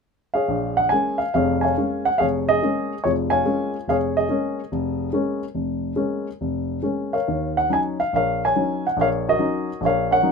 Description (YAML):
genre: solo jazz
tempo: 142 BPM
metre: 4/4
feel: swing 66% on 8ths, rubato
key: Bb minor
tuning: A4 = 439 Hz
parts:
  - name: dark baby grand piano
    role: solo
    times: 0.3-10.3 s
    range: F1 to Ab5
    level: -20 LUFS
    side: equal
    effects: none
room: light reverb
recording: minimal, uncompressed stereo recording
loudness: -20 LUFS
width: side -5 dB against mid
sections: 0.5-10.3 A section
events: none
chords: 0.5 Bbm7; 7.3 Ebm7